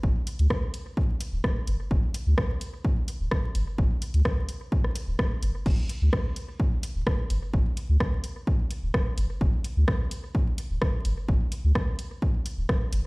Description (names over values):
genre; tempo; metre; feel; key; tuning
dub techno; 128 BPM; 4/4; straight; unclear; A4 = 440 Hz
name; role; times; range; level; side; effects
pure sine sub bass; bass; 0.0-13.0 s; D1 to D2; -23 LUFS; equal; sidechain pumping
electronic kick drum; drums; 0.0-12.8 s; none; -26 LUFS; equal; none
punchy analog drum machine; drums; 0.3-13.0 s; crash cymbal, hi-hat, rim click; -33 LUFS; equal; dub echo
room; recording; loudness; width
little or no reverb; played on a big sound system in a bare room, stone room reverb, vinyl crackle; -24 LUFS; side -27 dB against mid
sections
0.0-5.7 A section; 5.7-13.1 A section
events
none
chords
none